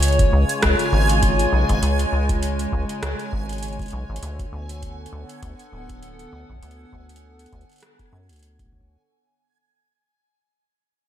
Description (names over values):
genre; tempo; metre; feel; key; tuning
IDM; 100 BPM; 4/4; swing 56% on 16ths; unclear; A4 = 442 Hz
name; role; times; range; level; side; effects
hollow soft pad; sustained chords; 0.0-9.0 s; C#3 to G#5; -26 LUFS; equal; chorus
deep acid bass; bass; 0.0-9.0 s; D1 to F#2; -22 LUFS; equal; none
electro analog drum machine; drums; 0.0-8.7 s; hi-hat, rim click; -26 LUFS; equal; overdrive
backwards swelling texture; texture; 0.0-9.0 s; G#5; -30 LUFS; right 4 dB; built-in reverb
electronic kick drum; drums; 0.2-8.9 s; none; -24 LUFS; equal; overdrive
room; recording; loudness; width
light reverb; none; -18 LUFS; side -11 dB against mid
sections
0.0-9.0 A section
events
fade-out 0.0-9.0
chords
0.0 C#; 4.2 Bm7/D